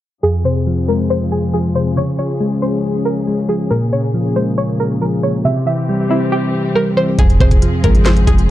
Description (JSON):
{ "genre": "hip hop, trap", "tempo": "138 BPM", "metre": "4/4", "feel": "half-time", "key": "F harmonic minor", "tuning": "A4 = 439 Hz", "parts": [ { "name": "string-like resonator pluck", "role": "melody", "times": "0.2-8.5 s", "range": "E4 to E5", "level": "-20 LUFS", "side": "equal", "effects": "chorus, phaser, low-pass filter, digital delay" }, { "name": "soft electric-piano-like synth keys", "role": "accompaniment", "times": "0.2-8.5 s", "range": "F2 to Db4", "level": "-16 LUFS", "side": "equal", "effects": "chorus, low-pass filter" }, { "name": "dark chamber string section", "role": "sustained chords", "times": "0.2-8.5 s", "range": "Db3 to Ab4", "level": "-23 LUFS", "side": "left 1 dB", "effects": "none" }, { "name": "clean 808-style bass", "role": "bass", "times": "7.2-8.5 s", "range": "F1 to Ab1", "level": "-13 LUFS", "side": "equal", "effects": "none" }, { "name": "trap drum kit", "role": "drums", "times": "7.2-8.5 s", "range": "handclaps, hi-hat, kick drum, snare drum", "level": "-14 LUFS", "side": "equal", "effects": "vintage 12-bit sampler grit" } ], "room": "digital ambience", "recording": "dark, warm production, low-pass filter", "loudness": "-13 LUFS", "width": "side -14 dB against mid", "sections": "0.2-7.2 A section; 7.2-8.5 B section", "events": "filter sweep 0.2-7.2", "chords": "0.2 Fm; 2.0 Db; 3.7 Bbm7; 5.4 C; 7.2 Fm" }